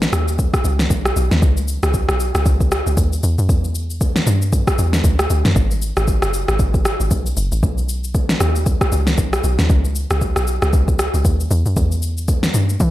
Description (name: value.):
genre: amapiano.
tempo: 116 BPM.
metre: 4/4.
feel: swing 58% on 16ths.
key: unclear.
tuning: A4 = 440 Hz.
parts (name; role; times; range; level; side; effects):
deep log drum bass; bass; 0.0-12.9 s; F#1 to E3; -18 LUFS; equal; none.
smooth R&B drum kit; drums; 0.0-12.9 s; kick drum, rim click, shaker, snare drum; -18 LUFS; equal; none.
room: little or no reverb.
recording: none.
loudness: -15 LUFS.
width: side -15 dB against mid.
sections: 0.0-12.9 A section.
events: none.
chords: none.